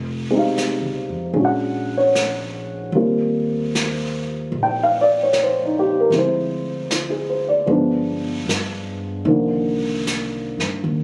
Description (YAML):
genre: jazz ballad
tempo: 76 BPM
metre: 4/4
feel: swing 69% on 8ths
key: unclear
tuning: A4 = 436 Hz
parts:
  - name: upright bass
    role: bass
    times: 0.0-11.0 s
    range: F1 to G2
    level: -31 LUFS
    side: equal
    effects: none
  - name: dark upright piano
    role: accompaniment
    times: 0.3-11.0 s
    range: D3 to G5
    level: -21 LUFS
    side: equal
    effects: none
  - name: vintage brush drum kit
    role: drums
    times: 0.6-11.0 s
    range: brushed snare drum, hi-hat, snare drum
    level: -30 LUFS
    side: equal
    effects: none
room: light reverb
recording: recorded on a phone in the room, studio ambience, compression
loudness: -20 LUFS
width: mono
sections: 0.0-11.0 A section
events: none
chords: 0.0 Fm7; 1.4 Bb7alt; 3.0 Eb69; 6.1 Dm7b5; 7.7 G7b9; 9.3 Cm11